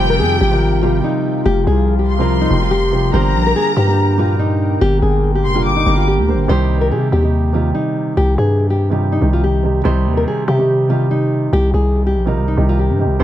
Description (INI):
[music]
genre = hip hop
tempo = 143 BPM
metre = 4/4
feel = half-time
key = C minor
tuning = A4 = 440 Hz
[part]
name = nylon-string guitar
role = melody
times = 0.0-13.2 s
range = Eb4 to C5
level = -19 LUFS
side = left 2 dB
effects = low-pass filter
[part]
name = rich studio violin section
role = second line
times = 0.0-6.0 s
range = G5 to D6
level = -22 LUFS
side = left 3 dB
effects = tape echo
[part]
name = dark baby grand piano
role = accompaniment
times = 0.0-13.2 s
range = Bb2 to C5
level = -20 LUFS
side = right 4 dB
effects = low-pass filter
[part]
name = deep dark ambient pad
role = sustained chords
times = 0.0-6.5 s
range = Bb2 to G5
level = -25 LUFS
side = left 3 dB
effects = chorus, built-in reverb
[part]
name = growling 808-style bass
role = bass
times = 0.0-13.2 s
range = F1 to C3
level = -16 LUFS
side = equal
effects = none
[sound]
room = light reverb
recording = dark, warm production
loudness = -13 LUFS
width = side -12 dB against mid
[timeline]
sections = 0.0-6.5 A section; 6.5-13.2 B section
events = none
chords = 0.0 Fsus2; 3.1 Gm; 6.5 Cm